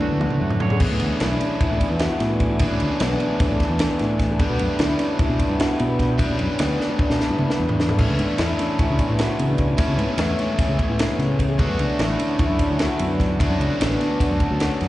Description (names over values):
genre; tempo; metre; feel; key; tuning
math rock and midwest emo; 300 BPM (eighths); 9/8; straight; unclear; A4 = 440 Hz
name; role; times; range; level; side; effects
twangy electric guitar; accompaniment; 0.0-0.8 s; A2 to C#5; -29 LUFS; right 6 dB; harmonic tremolo, slapback echo
handpan; arpeggios; 0.0-14.9 s; G#3 to A4; -23 LUFS; left 2 dB; slapback echo
cranked stack guitar; riff; 0.0-14.9 s; A2 to G#4; -28 LUFS; right 1 dB; overdrive, slapback echo
compact cocktail drum kit; drums; 0.0-14.9 s; crash cymbal, kick drum, ride cymbal, snare drum, toms; -23 LUFS; equal; none
fingered electric bass; bass; 0.1-14.9 s; A1 to C#3; -24 LUFS; equal; none
room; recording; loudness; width
studio ambience; live gig heard through the venue's PA, recital hall reverb, nothing above 10.3 kHz; -18 LUFS; side -16 dB against mid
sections
0.8-14.9 A section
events
drum fill 0.0-0.8, 6.8-8.0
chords
0.0 Dmaj7; 0.8 E7sus4; 4.4 G; 8.0 Aadd9; 11.6 Dmaj7